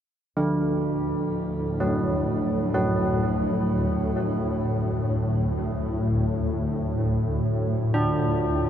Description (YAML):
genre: dark ambient drone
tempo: 64 BPM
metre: 4/4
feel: straight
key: D major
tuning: A4 = 443 Hz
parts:
  - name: swarming drone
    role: drone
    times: 1.0-8.7 s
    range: D2 to A2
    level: -25 LUFS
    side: left 1 dB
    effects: built-in reverb
  - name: carillon bells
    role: arpeggios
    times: 0.4-8.7 s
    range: D3 to D4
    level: -25 LUFS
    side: right 1 dB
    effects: tape echo, shimmer reverb
room: wet huge ambient reverb, RT60 7.4 s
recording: in a vast, echoing space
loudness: -22 LUFS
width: side -9 dB against mid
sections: 0.4-8.7 A section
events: none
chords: 0.4 D